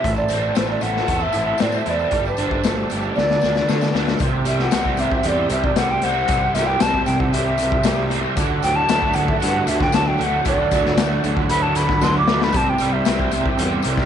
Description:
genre	psychedelic rock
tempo	115 BPM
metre	4/4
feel	straight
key	unclear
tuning	A4 = 440 Hz
part	hollow concert flute	melody	0.0-13.5 s	C5 to D6	-22 LUFS	equal	tape echo
part	combo organ	sustained chords	0.0-14.1 s	F#3 to A4	-28 LUFS	right 15 dB	none
part	crunchy overdriven guitar	riff	0.0-14.1 s	A2 to A4	-22 LUFS	right 1 dB	rotary speaker
part	fuzz picked electric bass	bass	0.0-14.1 s	G1 to D3	-26 LUFS	right 1 dB	overdrive
part	raw garage drum kit	drums	0.0-14.1 s	hi-hat, kick drum, snare drum	-23 LUFS	left 4 dB	none
part	tambourine	percussion	0.2-14.0 s	none	-38 LUFS	left 17 dB	none
room	studio ambience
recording	1960s-style stereo with parts hard left and right, nothing above 10.8 kHz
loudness	-17 LUFS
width	side -9 dB against mid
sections	0.0-4.2 A section; 4.2-14.1 B section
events	drum fill 3.2-4.2, 12.0-12.5; flute solo 4.2-14.1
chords	0.0 Am; 2.1 Gsus2; 3.2 D; 4.2 C; 8.4 D; 12.5 C

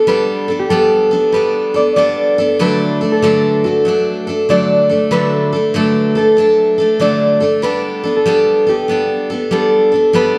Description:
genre	country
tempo	95 BPM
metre	4/4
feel	swing 66% on 8ths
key	G major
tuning	A4 = 438 Hz
part	concert harp	melody	0.0-10.4 s	F#4 to D5	-16 LUFS	equal	none
part	picked steel-string acoustic guitar	accompaniment	0.0-10.4 s	D3 to A4	-18 LUFS	equal	none
room	moderate recital hall reverb, RT60 1.3 s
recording	dark, warm production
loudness	-14 LUFS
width	mono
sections	0.0-10.4 A section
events	none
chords	0.0 Gadd9; 2.6 D; 7.6 Gadd9

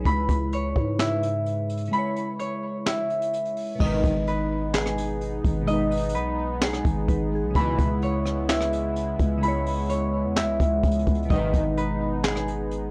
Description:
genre	hip hop, trap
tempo	128 BPM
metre	4/4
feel	half-time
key	G# minor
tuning	A4 = 440 Hz
part	glassy digital keys	accompaniment	0.0-12.9 s	B2 to C#5	-33 LUFS	equal	chorus
part	concert harp	arpeggios	0.0-12.9 s	E4 to B5	-30 LUFS	equal	tape echo
part	growling 808-style bass	bass	0.0-12.9 s	G#1 to G#2	-30 LUFS	equal	none
part	jazz brush drum kit	drums	0.1-12.8 s	crash cymbal, handclaps, hi-hat, kick drum, rim click, snare drum	-29 LUFS	equal	vintage 12-bit sampler grit
part	warm analog pad	sustained chords	3.8-12.9 s	C#3 to E4	-36 LUFS	equal	chorus
part	analog synth brass	stabs	3.8-4.1, 7.6-7.9, 11.3-11.6 s	B1 to E3	-33 LUFS	equal	chorus
room	little or no reverb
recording	dry, gritty hardware recording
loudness	-25 LUFS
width	mono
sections	0.0-3.8 A section; 3.8-12.9 B section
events	break 1.9-3.8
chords	0.1 C#m7; 3.8 G#m; 7.6 C#m7; 11.3 G#m

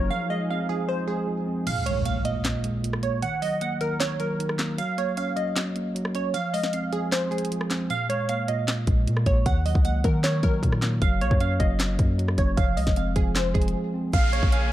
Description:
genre	hip hop, trap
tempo	154 BPM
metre	4/4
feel	half-time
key	Bb minor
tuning	A4 = 440 Hz
part	glassy wavetable pluck	melody	0.0-14.7 s	Ab4 to Gb5	-28 LUFS	right 2 dB	chorus, ping-pong delay
part	mellow tine electric piano	accompaniment	0.0-14.2 s	Bb2 to Db4	-28 LUFS	right 1 dB	none
part	sweeping resonant pad	sustained chords	0.0-1.7, 14.1-14.7 s	Db3 to Ab4	-36 LUFS	left 1 dB	chorus
part	long sustained 808-style bass	bass	0.0-0.1, 8.9-14.7 s	F1 to Eb3	-25 LUFS	equal	none
part	trap drum kit	drums	1.7-14.6 s	crash cymbal, handclaps, hi-hat, kick drum, rim click, snare drum	-25 LUFS	equal	none
part	impact and downlifter	sound effects	1.7-3.2, 14.1-14.7 s	none	-32 LUFS	equal	none
part	breathy concert flute	second line	14.1-14.7 s	F5 to Ab5	-32 LUFS	left 5 dB	ping-pong delay
room	digital ambience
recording	dark, warm production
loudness	-22 LUFS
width	side -14 dB against mid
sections	0.0-1.7 A section; 1.7-14.1 B section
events	break 0.1-1.7, 13.7-14.1; kick muted 1.7-7.9, 7.9-8.7; impact 1.7-3.2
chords	0.1 Fm7; 1.7 Bb7(no3); 3.2 Ebm; 4.8 Gb; 6.3 Fm; 7.9 Bb7(no3); 9.5 Ebm7; 11.0 Gb; 12.6 Fm; 14.1 Bbm7

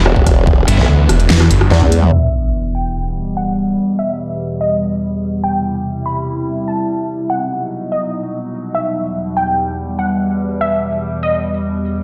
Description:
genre	heavy wobble dubstep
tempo	145 BPM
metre	4/4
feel	half-time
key	E harmonic minor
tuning	A4 = 440 Hz
part	evolving wavetable pad	sustained chords	0.0-12.0 s	E2 to E4	-22 LUFS	equal	chorus, built-in reverb, phaser, sidechain pumping
part	tight distorted guitar	stabs	0.0-0.9 s	B3 to E5	-29 LUFS	equal	distortion, tape echo
part	snarling distorted saw bass	bass	0.0-1.7 s	E1 to E2	-14 LUFS	equal	distortion, overdrive
part	formant-sweep wobble bass	bass	0.1-2.1 s	E1 to E2	-15 LUFS	equal	chorus, overdrive
part	dubstep drum kit	drums	0.1-2.1 s	hi-hat, rim click, snare drum, toms	-20 LUFS	equal	overdrive
part	electronic kick drum	drums	0.2-1.9 s	none	-15 LUFS	equal	overdrive
part	unison pluck	melody	2.1-12.0 s	D#5 to B5	-23 LUFS	equal	tape echo
part	sub drop	sound effects	2.1-3.8 s	none	-21 LUFS	equal	none
room	moderate digital room reverb, RT60 1.1 s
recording	played on a big sound system in a bare room, large studio reverb, low-pass filter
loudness	-16 LUFS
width	mono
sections	0.0-2.1 A section; 2.1-12.0 B section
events	drop 0.0-2.1; drum fill 1.7-2.1; impact 2.1-3.8; filter sweep 2.1-12.0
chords	0.0 E5; 2.1 Em; 5.4 C; 7.1 B; 8.7 Em

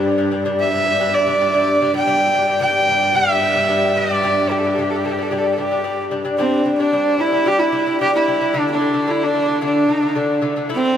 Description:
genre	mongolian traditional, Mongolian folk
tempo	111 BPM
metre	4/4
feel	straight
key	G zhi mode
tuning	A4 = 439 Hz
part	clear horsehead fiddle	melody	0.0-11.0 s	C4 to G5	-17 LUFS	right 1 dB	none
part	lute	arpeggios	0.0-10.9 s	D3 to E4	-19 LUFS	left 2 dB	none
part	rich cello	drone	0.0-6.4 s	G2	-27 LUFS	left 1 dB	none
room	wet huge ambient reverb, RT60 6.9 s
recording	heard from further back in the room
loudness	-15 LUFS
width	side -9 dB against mid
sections	0.0-6.4 A section; 6.4-11.0 B section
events	none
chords	0.0 G5; 8.5 D5

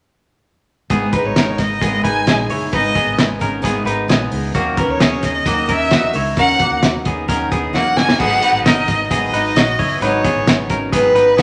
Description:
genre	jangly indie pop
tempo	132 BPM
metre	4/4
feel	straight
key	G# minor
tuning	A4 = 439 Hz
part	picked twelve-string acoustic guitar	accompaniment	0.9-11.4 s	G#2 to A#4	-27 LUFS	equal	none
part	semi-hollow electric guitar	arpeggios	0.9-11.4 s	A#3 to D#5	-23 LUFS	equal	none
part	vintage muted fingered electric bass	bass	0.9-11.4 s	F#1 to E2	-29 LUFS	equal	none
part	cloth-damped thuddy drum kit	drums	0.9-11.4 s	crash cymbal, hi-hat, kick drum, snare drum	-20 LUFS	equal	none
part	rich violin	melody	1.1-11.4 s	B4 to G#5	-19 LUFS	equal	none
room	wet large studio reverb, RT60 1.2 s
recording	none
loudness	-16 LUFS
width	mono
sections	0.9-8.2 A section; 8.2-11.4 B section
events	drum fill 7.7-8.2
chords	0.9 G#madd9

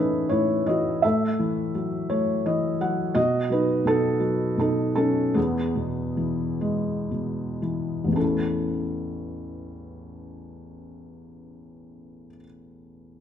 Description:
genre	classical, lyrical solo piano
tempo	56-85 BPM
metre	3/4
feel	rubato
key	A lydian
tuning	A4 = 440 Hz
part	felt-muted upright piano	solo	0.0-13.2 s	A1 to F#5	-23 LUFS	equal	none
room	moderate recital hall reverb, RT60 1.4 s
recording	none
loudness	-22 LUFS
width	side -9 dB against mid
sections	0.0-8.2 A section; 8.2-13.2 B section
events	felt piano fill 1.8-3.2; slowing down 3.2-8.2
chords	0.0 Amaj7; 1.0 F#m7/A; 3.2 B7; 5.4 E; 8.2 A

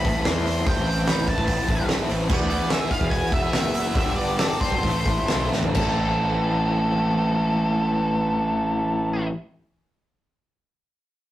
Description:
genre	indie rock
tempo	125-147 BPM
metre	4/4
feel	straight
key	A minor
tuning	A4 = 440 Hz
part	octave-fuzz lead guitar	melody	0.0-9.3 s	A4 to C6	-27 LUFS	equal	distortion
part	biting overdriven guitar	riff	0.0-9.3 s	E3 to B4	-29 LUFS	right 2 dB	none
part	crunchy overdriven guitar	riff	0.0-9.3 s	E2 to A4	-28 LUFS	left 2 dB	tremolo
part	loose indie drum kit	drums	0.0-5.9 s	crash cymbal, hi-hat, kick drum, snare drum, toms	-25 LUFS	equal	none
part	fuzz picked electric bass	bass	0.1-9.3 s	E1 to E2	-25 LUFS	right 1 dB	overdrive
room	moderate studio reverb, RT60 0.6 s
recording	rough rehearsal-room recording, warm saturation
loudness	-20 LUFS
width	side -14 dB against mid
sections	0.0-5.8 A section; 5.8-9.6 B section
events	slowing down 2.3-5.8; drum fill 5.5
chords	0.0 Amadd9; 2.3 E; 4.0 Gadd9; 4.8 Amadd9; 5.8 Am

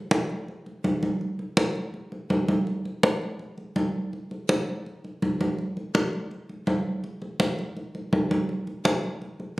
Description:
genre	latin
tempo	165 BPM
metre	4/4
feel	straight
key	none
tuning	none
part	congas	percussion	0.1-9.6 s	none	-25 LUFS	equal	none
room	wet large studio reverb, RT60 1.1 s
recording	recorded on a phone in the room, studio reverb, compression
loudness	-25 LUFS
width	side -20 dB against mid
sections	0.0-1.2 A section; 1.2-9.6 A section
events	none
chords	none

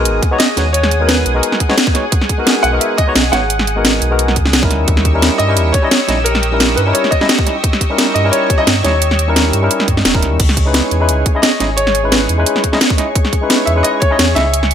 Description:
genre	liquid drum and bass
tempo	174 BPM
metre	4/4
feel	swing 54% on 16ths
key	G# minor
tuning	A4 = 440 Hz
part	barky tine electric piano	accompaniment	0.0-14.5 s	G3 to D#5	-18 LUFS	left 1 dB	overdrive, auto-pan, tape echo
part	lush unison pad	sustained chords	0.0-14.7 s	G4 to E6	-21 LUFS	left 1 dB	chorus, sidechain pumping
part	sub bass with octave	bass	0.0-14.7 s	D#1 to G2	-16 LUFS	equal	none
part	drum and bass drum kit	drums	0.1-14.7 s	crash cymbal, hi-hat, snare drum	-15 LUFS	right 1 dB	overdrive
part	electronic kick drum	drums	0.2-14.1 s	none	-15 LUFS	equal	overdrive
part	clear grand piano	melody	0.4-14.7 s	A#4 to F#5	-18 LUFS	equal	dub echo
room	light reverb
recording	none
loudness	-11 LUFS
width	side -9 dB against mid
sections	0.0-14.7 A section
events	none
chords	0.0 G#m7; 4.7 D#7b9; 10.4 C#m7

